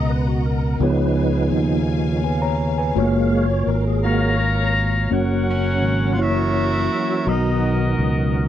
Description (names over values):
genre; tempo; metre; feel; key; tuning
slow gospel; 56 BPM (dotted quarters); 6/8; straight; F# major; A4 = 440 Hz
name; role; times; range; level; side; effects
mellow tine electric piano; accompaniment; 0.0-8.5 s; B2 to A#5; -23 LUFS; left 2 dB; medium stereo tremolo
tonewheel organ; sustained chords; 0.0-8.5 s; C#3 to E#5; -24 LUFS; right 4 dB; slow rotary speaker, chorus vibrato
warm studio string section; sustained chords; 0.0-5.1 s; B3 to A#5; -34 LUFS; equal; none
fingered electric bass; bass; 0.0-8.5 s; F#1 to D#2; -21 LUFS; equal; none
mellow horn section; melody; 4.0-8.5 s; F#4 to A#5; -24 LUFS; left 3 dB; none
warm tenor saxophone; melody; 5.5-8.1 s; C#4 to F#4; -26 LUFS; right 4 dB; none
room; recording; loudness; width
little or no reverb; dry, close 1970s-style studio recording; -17 LUFS; side -11 dB against mid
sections
0.0-5.1 A section; 5.1-8.5 B section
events
tonewheel organ solo 0.0-5.1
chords
0.0 Bmaj7; 0.8 C#7; 3.0 F#maj7; 5.1 F#; 6.2 F#7; 7.3 Bmaj7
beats
| 0.81 1.89 | 2.96 4.04 | 5.12 6.20 | 7.27 8.35